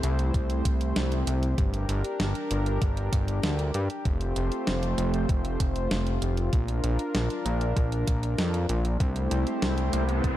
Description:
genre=synthwave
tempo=97 BPM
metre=4/4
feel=straight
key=F major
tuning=A4 = 440 Hz
part: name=warm analog pad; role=sustained chords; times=0.0-10.4 s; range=A3 to C5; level=-31 LUFS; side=equal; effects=chorus, sidechain pumping
part: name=fat analog bass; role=bass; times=0.0-10.4 s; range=F1 to G2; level=-27 LUFS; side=equal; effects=tube saturation, sidechain pumping
part: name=clean 12-bit digital drum machine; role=drums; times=0.0-10.4 s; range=hi-hat, snare drum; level=-33 LUFS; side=right 1 dB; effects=none
part: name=electronic kick drum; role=drums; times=0.3-10.4 s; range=none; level=-26 LUFS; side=equal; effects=none
part: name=riser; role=sound effects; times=9.5-10.4 s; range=none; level=-34 LUFS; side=equal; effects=none
room=little or no reverb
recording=dark, warm production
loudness=-24 LUFS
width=side -13 dB against mid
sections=0.0-10.4 A section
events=riser 9.5-10.4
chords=0.0 C6; 1.6 Gm; 4.1 Fadd9; 6.5 Bb; 9.0 C6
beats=0.34 0.96 | 1.58 2.20 2.82 3.44 | 4.05 4.67 5.29 5.91 | 6.53 7.15 7.77 8.38 | 9.00 9.62 10.24

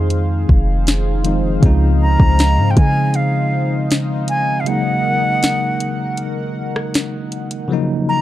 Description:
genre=contemporary R&B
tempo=79 BPM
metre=4/4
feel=straight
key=unclear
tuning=A4 = 440 Hz
part: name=reedy concert flute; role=melody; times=0.0-8.2 s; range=F5 to Bb5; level=-20 LUFS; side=equal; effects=tape echo
part: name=bell-like tine electric piano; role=accompaniment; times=0.0-8.2 s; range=Db3 to Eb4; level=-20 LUFS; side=left 1 dB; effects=medium stereo tremolo
part: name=chorused pulse-width pad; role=sustained chords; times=0.0-7.7 s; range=Eb4 to Gb5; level=-27 LUFS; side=equal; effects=none
part: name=warm 808-style bass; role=bass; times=0.0-4.6 s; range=F1 to Db3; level=-16 LUFS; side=equal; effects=none
part: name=smooth R&B drum kit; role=drums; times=0.1-7.7 s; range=hi-hat, kick drum, rim click, snare drum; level=-15 LUFS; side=equal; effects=none
room=little or no reverb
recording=dark, warm production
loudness=-14 LUFS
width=side -14 dB against mid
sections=0.0-7.7 A section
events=break 4.7-7.7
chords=0.0 Fm7; 1.6 Dbmaj9; 4.7 Gb6; 7.7 Ebm7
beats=0.11 0.86 | 1.62 2.38 3.14 3.90 | 4.66 5.42 6.18 6.94 | 7.70

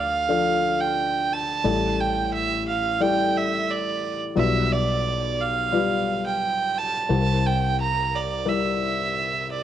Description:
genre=acoustic folk-pop ballad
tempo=88 BPM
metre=4/4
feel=straight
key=D minor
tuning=A4 = 440 Hz
part: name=rich violin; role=melody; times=0.0-9.6 s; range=D5 to Bb5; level=-24 LUFS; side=right 5 dB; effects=none
part: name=felt-muted upright piano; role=accompaniment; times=0.0-9.6 s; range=A1 to D5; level=-25 LUFS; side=left 5 dB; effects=cassette tape
part: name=woody fretless electric bass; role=bass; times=0.0-9.6 s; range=A1 to D2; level=-30 LUFS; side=equal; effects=none
room=wet spring reverb, RT60 1.1 s, studio reverb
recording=home recording on cassette, nothing above 10.7 kHz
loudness=-21 LUFS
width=side -10 dB against mid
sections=0.0-9.6 A section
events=none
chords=0.0 Dm7; 1.6 A7sus4; 4.4 G7/B; 7.1 C7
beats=0.29 0.97 | 1.65 2.33 3.01 3.69 | 4.37 5.05 5.73 6.41 | 7.09 7.78 8.46 9.14

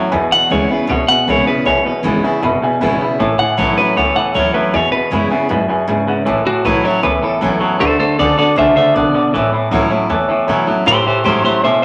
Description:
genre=rockabilly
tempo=156 BPM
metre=4/4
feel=straight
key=A major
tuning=A4 = 440 Hz
part: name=dark upright piano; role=accompaniment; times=0.0-11.8 s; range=B4 to B5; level=-22 LUFS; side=equal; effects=none
part: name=picked steel-string acoustic guitar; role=accompaniment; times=0.0-11.8 s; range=E2 to F#4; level=-23 LUFS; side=equal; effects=none
part: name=twangy electric guitar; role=riff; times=0.0-11.8 s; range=E2 to B3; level=-20 LUFS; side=equal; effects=none
part: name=upright bass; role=bass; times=0.1-11.8 s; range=F#1 to B2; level=-27 LUFS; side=equal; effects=none
part: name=clean electric guitar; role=melody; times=0.3-11.8 s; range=F#4 to F#5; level=-17 LUFS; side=equal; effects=spring reverb
room=wet club reverb, RT60 0.5 s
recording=none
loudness=-15 LUFS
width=mono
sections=0.0-6.3 A section; 6.3-11.8 B section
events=clean electric guitar solo 6.3-11.8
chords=0.1 E; 3.2 A; 4.7 E; 6.3 A; 7.8 D; 9.3 A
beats=| 0.13 0.51 0.90 1.28 | 1.66 2.05 2.43 2.81 | 3.20 3.58 3.97 4.35 | 4.74 5.12 5.50 5.89 | 6.27 6.66 7.04 7.42 | 7.81 8.19 8.58 8.96 | 9.34 9.73 10.11 10.50 | 10.88 11.26 11.65

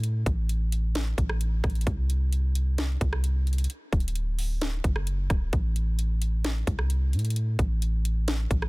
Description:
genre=hip hop, atmospheric cloud-rap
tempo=131 BPM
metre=4/4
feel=half-time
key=A dorian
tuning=A4 = 442 Hz
part: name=soft 808-style bass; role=bass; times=0.0-8.7 s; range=D1 to A2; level=-25 LUFS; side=equal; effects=none
part: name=trap drum kit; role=drums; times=0.0-8.7 s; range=hi-hat, kick drum, rim click, snare drum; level=-29 LUFS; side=equal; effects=none
room=digital ambience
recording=dense, heavily limited modern master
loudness=-24 LUFS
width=side -25 dB against mid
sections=0.0-8.7 A section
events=none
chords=none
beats=| 0.04 0.49 0.95 1.41 | 1.87 2.33 2.78 3.24 | 3.70 4.16 4.62 5.07 | 5.53 5.99 6.45 6.91 | 7.36 7.82 8.28

